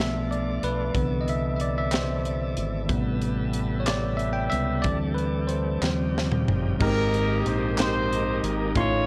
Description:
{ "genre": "slow gospel", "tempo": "62 BPM (dotted quarters)", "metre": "6/8", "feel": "straight", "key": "unclear", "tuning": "A4 = 439 Hz", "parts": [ { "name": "bell-like tine electric piano", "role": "accompaniment", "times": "0.0-9.1 s", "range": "Ab2 to C6", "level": "-29 LUFS", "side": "equal", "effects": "none" }, { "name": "bright tonewheel organ", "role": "sustained chords", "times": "0.0-9.1 s", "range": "C3 to D5", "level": "-38 LUFS", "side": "equal", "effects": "fast rotary speaker, overdrive" }, { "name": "fingered electric bass", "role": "bass", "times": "0.0-9.1 s", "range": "G1 to Eb2", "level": "-31 LUFS", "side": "equal", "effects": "none" }, { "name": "crisp fusion drum kit", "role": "drums", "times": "0.0-8.9 s", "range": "crash cymbal, hi-hat, kick drum, snare drum, toms", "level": "-31 LUFS", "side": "equal", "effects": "none" }, { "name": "group handclap", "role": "percussion", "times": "1.9-8.1 s", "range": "none", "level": "-36 LUFS", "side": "equal", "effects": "none" }, { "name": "warm horn section", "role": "melody", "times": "6.8-9.1 s", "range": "Eb4 to Db5", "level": "-29 LUFS", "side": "equal", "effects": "slapback echo" } ], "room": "light reverb, studio reverb", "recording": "worn, warbling old tape, cassette tape, warbly pitch drift", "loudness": "-26 LUFS", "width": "mono", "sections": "0.0-6.8 A section; 6.8-9.1 B section", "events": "tine electric piano solo 0.0-6.8; drum fill 5.8-6.8", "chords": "0.0 Bm7b5; 0.9 Cmaj7; 2.9 Am9; 4.9 D7sus4; 5.8 Eb13; 6.8 Abmaj9", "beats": "| 0.95 1.93 | 2.90 3.88 | 4.86 5.83 | 6.80 7.78 | 8.76" }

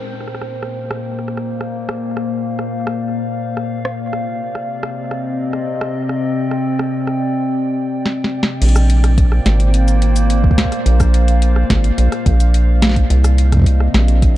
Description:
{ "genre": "IDM", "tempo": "107 BPM", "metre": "4/4", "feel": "straight", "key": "unclear", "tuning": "A4 = 440 Hz", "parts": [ { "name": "warbly tape-like pad", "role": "sustained chords", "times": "0.0-14.4 s", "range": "Bb2 to G5", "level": "-20 LUFS", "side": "left 1 dB", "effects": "chorus, built-in reverb" }, { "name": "booming analog drum machine", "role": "drums", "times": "0.2-14.3 s", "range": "cabasa, crash cymbal, hi-hat, rim click, snare drum", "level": "-23 LUFS", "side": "equal", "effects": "low-pass filter on hats, low-pass filter on perc, low-pass filter on snare, low-pass filter on cymbals, tape echo" }, { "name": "deep acid bass", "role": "bass", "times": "8.6-14.4 s", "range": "Ab1 to C2", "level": "-12 LUFS", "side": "equal", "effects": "none" }, { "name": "electronic kick drum", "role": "drums", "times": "9.2-14.3 s", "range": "none", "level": "-15 LUFS", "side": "equal", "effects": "none" } ], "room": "little or no reverb", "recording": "dark, warm production", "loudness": "-14 LUFS", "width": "side -15 dB against mid", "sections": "0.0-8.6 A section; 8.6-14.4 B section", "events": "drum fill 8.1-8.6", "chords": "0.0 Bbadd9; 4.1 Cmadd9; 8.6 Bbadd9; 13.1 Cmadd9", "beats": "0.20 0.77 1.33 | 1.89 2.45 3.01 3.57 | 4.13 4.69 5.25 5.81 | 6.37 6.93 7.50 8.06 | 8.62 9.18 9.74 10.30 | 10.86 11.42 11.98 12.54 | 13.10 13.66 14.22" }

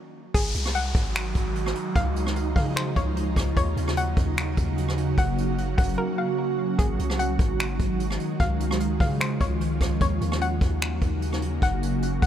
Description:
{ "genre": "hip hop, atmospheric cloud-rap", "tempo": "149 BPM", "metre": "4/4", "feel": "half-time", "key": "unclear", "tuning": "A4 = 440 Hz", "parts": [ { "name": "ethereal airy pad", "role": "sustained chords", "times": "0.6-12.3 s", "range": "Db3 to Gb4", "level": "-28 LUFS", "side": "right 2 dB", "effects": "ensemble chorus, built-in reverb" }, { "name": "hollow square pluck", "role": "arpeggios", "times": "0.3-12.3 s", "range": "Ab4 to Gb5", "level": "-32 LUFS", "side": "left 3 dB", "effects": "chorus, low-pass filter, digital delay" }, { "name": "long sustained 808-style bass", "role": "bass", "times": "0.3-12.3 s", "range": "Gb1 to Db3", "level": "-28 LUFS", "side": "equal", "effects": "none" }, { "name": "vintage brush drum kit", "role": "drums", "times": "0.3-12.3 s", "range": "finger snaps, hi-hat, kick drum, rim click", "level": "-26 LUFS", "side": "equal", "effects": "none" }, { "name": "downlifter", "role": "sound effects", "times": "0.3-3.6 s", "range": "none", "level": "-36 LUFS", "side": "left 1 dB", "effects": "none" } ], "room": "small room ambience", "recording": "none", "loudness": "-22 LUFS", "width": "side -10 dB against mid", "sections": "0.3-12.3 A section", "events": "riser 0.3; stop 0.0-0.3; drums muted 6.0-6.8", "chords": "0.3 Ab7; 2.0 Dbmaj7; 3.6 Ebm7; 5.2 Gbmaj7; 6.8 Ab7; 8.4 Dbmaj7; 10.0 Ebm7; 11.6 Gb", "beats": "| 0.34 0.75 1.15 1.55 | 1.96 2.36 2.76 3.16 | 3.57 3.97 4.37 4.78 | 5.18 5.58 5.98 6.39 | 6.79 7.19 7.59 8.00 | 8.40 8.80 9.20 9.61 | 10.01 10.41 10.81 11.22 | 11.62 12.02" }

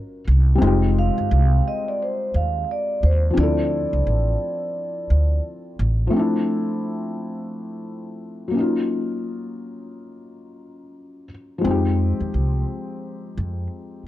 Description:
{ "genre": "lo-fi hip hop", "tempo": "87 BPM", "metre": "4/4", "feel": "swing 61% on 16ths", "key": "unclear", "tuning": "A4 = 441 Hz", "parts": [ { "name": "felt-muted upright piano", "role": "accompaniment", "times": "0.0-14.1 s", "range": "F3 to Bb4", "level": "-25 LUFS", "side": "left 2 dB", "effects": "low-pass filter, plate reverb" }, { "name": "upright bass", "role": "bass", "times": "0.3-6.1, 11.6-13.7 s", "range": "F1 to F2", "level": "-19 LUFS", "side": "equal", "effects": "none" }, { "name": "vibraphone with soft mallets", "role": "melody", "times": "1.0-5.4 s", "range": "C5 to F5", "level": "-26 LUFS", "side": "right 2 dB", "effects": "low-pass filter, tape echo" } ], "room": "light reverb", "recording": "cassette tape", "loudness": "-19 LUFS", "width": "side -14 dB against mid", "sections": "0.0-6.1 A section; 6.1-14.1 B section", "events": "none", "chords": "0.0 Ebm9; 0.6 Fm9; 3.4 Dm9; 8.5 Ebm9; 11.6 Fm9", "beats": "| 0.61 1.30 1.99 2.68 | 3.37 4.06 4.75 5.43 | 6.12 6.82 7.50 8.19 | 8.88 9.57 10.26 10.95 | 11.64 12.33 13.02 13.71" }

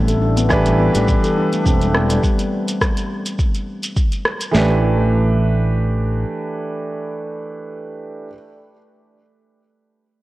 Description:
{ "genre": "organic downtempo", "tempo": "104 BPM", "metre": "4/4", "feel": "swing 54% on 16ths", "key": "unclear", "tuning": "A4 = 441 Hz", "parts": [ { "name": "handpan", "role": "arpeggios", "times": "0.0-4.8 s", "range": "E3 to A4", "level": "-22 LUFS", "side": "left 1 dB", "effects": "tape echo" }, { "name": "sustaining fretless electric bass", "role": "bass", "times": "0.0-6.2 s", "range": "E1 to A1", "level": "-17 LUFS", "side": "equal", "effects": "lush chorus" }, { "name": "deep house drum kit", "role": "drums", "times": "0.1-4.5 s", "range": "hi-hat, rim click, shaker", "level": "-24 LUFS", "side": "equal", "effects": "none" }, { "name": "felt-muted upright piano", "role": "accompaniment", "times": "0.5-8.3 s", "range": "E3 to B4", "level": "-21 LUFS", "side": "right 2 dB", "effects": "sidechain pumping, tape echo" }, { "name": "deep house drum kit", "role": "drums", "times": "0.5-4.7 s", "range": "handclaps, kick drum, snare drum", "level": "-19 LUFS", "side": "equal", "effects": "none" } ], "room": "light reverb", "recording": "worn, warbling old tape, cassette tape, warbly pitch drift", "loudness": "-16 LUFS", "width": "side -17 dB against mid", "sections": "0.0-4.5 A section; 4.5-6.9 B section", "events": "none", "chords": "0.0 A7(no3); 2.2 N.C.; 4.5 A5", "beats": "0.51 1.08 1.66 | 2.24 2.81 3.39 3.97 | 4.54 5.12 5.70 6.28" }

